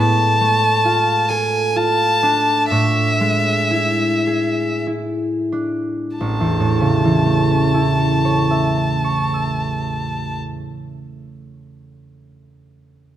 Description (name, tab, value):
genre	classical, romantic duo for violin and harp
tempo	43-70 BPM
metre	3/4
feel	rubato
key	A major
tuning	A4 = 441 Hz
part	rich violin	melody	0.0-10.4 s	E5 to A5	-19 LUFS	left 2 dB	none
part	concert harp	accompaniment	0.0-11.5 s	A1 to E6	-18 LUFS	right 2 dB	none
room	moderate scoring stage reverb, RT60 1.6 s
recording	close, detailed microphones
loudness	-15 LUFS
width	side -11 dB against mid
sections	0.0-6.2 A section; 6.2-10.0 B section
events	slowing down 0.0-6.2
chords	0.0 Dm/A; 2.7 E7/A; 6.2 A